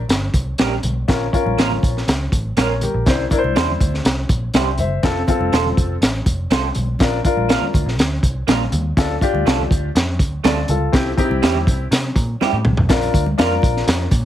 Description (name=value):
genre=uptempo 1960s-style soul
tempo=122 BPM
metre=4/4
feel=straight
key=unclear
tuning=A4 = 440 Hz
part: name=vintage muted picked electric bass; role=bass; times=0.0-14.2 s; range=E1 to C3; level=-22 LUFS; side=equal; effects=none
part: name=crunchy breakbeat drum kit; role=drums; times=0.1-14.2 s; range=hi-hat, kick drum, snare drum, toms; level=-18 LUFS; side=equal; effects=none
part: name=congas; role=percussion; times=0.1-14.2 s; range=none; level=-30 LUFS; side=left 2 dB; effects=none
part: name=electric guitar through a small old amp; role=stabs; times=0.6-13.5 s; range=G3 to C5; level=-22 LUFS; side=right 7 dB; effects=ensemble chorus
part: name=warm baby grand piano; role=accompaniment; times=1.1-14.0 s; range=C4 to G5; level=-21 LUFS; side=left 4 dB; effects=none
room=light reverb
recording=heavily compressed radio sound, multiband compression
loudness=-15 LUFS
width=side -12 dB against mid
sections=0.0-12.9 A section; 12.9-14.2 B section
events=drum fill 12.4-12.9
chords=0.0 Gm; 1.1 Bbm; 3.1 Cadd9; 5.0 F; 7.0 Bb; 9.0 Dm; 10.9 C; 12.9 Bb